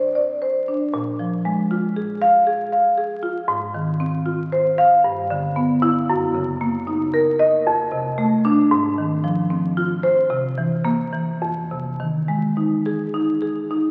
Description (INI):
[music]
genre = classical, contemporary piece for solo marimba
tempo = 102-120 BPM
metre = 5/4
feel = rubato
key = F dorian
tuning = A4 = 442 Hz
[part]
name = marimba with medium hard mallets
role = solo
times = 0.0-13.9 s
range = F2 to F5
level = -20 LUFS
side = equal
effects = none
[sound]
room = wet church reverb, RT60 3.6 s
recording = very old 78 rpm record, vinyl crackle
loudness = -20 LUFS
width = mono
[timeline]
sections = 0.0-13.9 A section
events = none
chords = 0.0 Bbadd9; 0.9 Fm/Bb; 3.5 Ab6; 5.1 G6; 6.1 Gb6; 7.7 F6; 8.7 Ab6; 10.3 C7; 11.4 Fm7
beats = 0.42 | 0.94 1.45 1.97 2.48 2.99 | 3.49 4.00 4.53 5.05 5.57 | 6.09 6.61 7.14 7.66 8.19 | 8.72 9.24 9.78 10.31 10.86 | 11.43 12.01 12.58 13.15 13.71